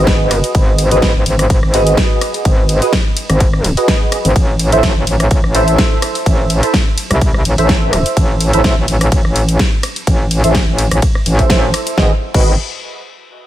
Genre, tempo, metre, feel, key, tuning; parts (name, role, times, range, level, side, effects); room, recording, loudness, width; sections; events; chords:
bass house; 126 BPM; 4/4; swing 55% on 16ths; A4 = 440 Hz
percussive organ stab; stabs; 0.0-12.5 s; E4 to E5; -18 LUFS; right 2 dB; ensemble chorus, sidechain pumping, dub echo
metallic wobble bass; bass; 0.0-12.6 s; G#1 to C2; -14 LUFS; equal; chorus, overdrive, sidechain pumping
big-room dance drum kit; drums; 0.1-12.4 s; crash cymbal, hi-hat, ride cymbal, rim click, snare drum; -19 LUFS; equal; small room reverb
electronic kick drum; drums; 0.1-12.4 s; -14 LUFS; equal; small room reverb
little or no reverb; -11 LUFS; side -13 dB against mid
0.0-12.0 A section; 12.0-13.5 B section
drop 0.0-12.0
0.0 G#m7; 4.4 Am; 12.0 G#m7